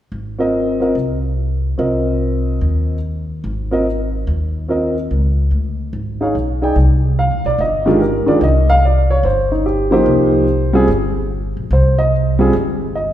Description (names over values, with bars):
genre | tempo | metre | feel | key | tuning
jazz piano trio | 145 BPM | 4/4 | swing 66% on 8ths | C minor | A4 = 443 Hz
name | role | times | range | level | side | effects
upright bass | bass | 0.1-13.1 s | G1 to Eb2 | -17 LUFS | equal | none
dark upright piano | melody | 0.4-13.1 s | Eb3 to G5 | -16 LUFS | equal | none
room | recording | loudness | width
wet concert hall reverb, RT60 1.9 s | recorded in a church or concert hall | -14 LUFS | side -11 dB against mid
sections
0.1-6.8 A section; 6.8-13.1 B section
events
none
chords
0.1 Ab69; 1.8 Cm7; 3.4 Abadd9; 5.1 Db7(no3); 6.8 Cm